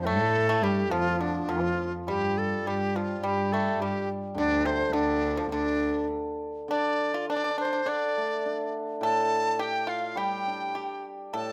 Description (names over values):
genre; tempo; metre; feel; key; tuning
chinese traditional, Chinese chamber ensemble; 104 BPM; 2/4; rubato; D yu mode; A4 = 442 Hz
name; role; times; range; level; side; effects
reedy large dizi; melody; 0.0-11.5 s; D4 to A5; -31 LUFS; equal; none
pipa; second line; 0.0-11.5 s; C3 to A4; -35 LUFS; equal; none
rich cello; second line; 0.0-6.1 s; D2 to A2; -34 LUFS; equal; none
hammered dulcimer; accompaniment; 0.0-11.5 s; A2 to G4; -34 LUFS; equal; none
room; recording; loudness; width
moderate recital hall reverb, RT60 1.6 s; close, detailed microphones; -28 LUFS; mono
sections
0.0-6.7 A section; 6.7-11.5 B section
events
none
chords
none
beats
0.34 | 0.90 1.48 | 2.07 2.66 | 3.24 3.81 | 4.37 4.95 | 5.52 6.11 | 6.71 7.30 | 7.88 8.46 | 9.03 9.60 | 10.17 10.76 | 11.35